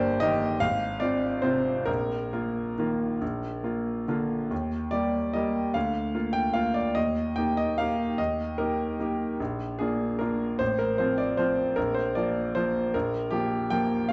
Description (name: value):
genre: classical, piano waltz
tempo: 131-164 BPM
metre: 3/4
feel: rubato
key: unclear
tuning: A4 = 441 Hz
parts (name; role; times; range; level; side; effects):
- bright baby grand piano; solo; 0.0-14.1 s; G1 to G5; -27 LUFS; equal; none
room: wet recital hall reverb, RT60 1.4 s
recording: dark, warm production, nothing above 7.9 kHz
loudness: -28 LUFS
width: mono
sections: 0.0-4.5 A section; 4.5-14.1 B section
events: none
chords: 0.0 Eb/G; 0.6 Fm/Ab; 1.9 Bbsus4; 3.2 Bb; 4.5 Eb; 5.8 Bb/D; 7.0 Eb; 9.4 Bb; 10.6 F/A; 11.8 Bb